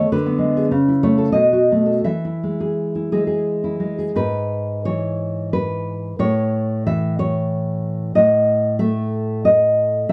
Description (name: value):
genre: romantic piece for solo classical guitar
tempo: 83-97 BPM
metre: 3/4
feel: rubato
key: E major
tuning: A4 = 440 Hz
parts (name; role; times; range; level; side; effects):
- nylon-string guitar; solo; 0.0-10.1 s; G#2 to E5; -19 LUFS; equal; none
room: moderate studio reverb, RT60 0.7 s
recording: none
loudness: -19 LUFS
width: mono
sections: 0.0-4.2 A section; 4.2-10.1 B section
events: none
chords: 0.1 G#dim/D; 0.7 A/C#; 1.4 B7; 2.1 E; 4.2 E/G#; 6.2 A; 8.2 N.C.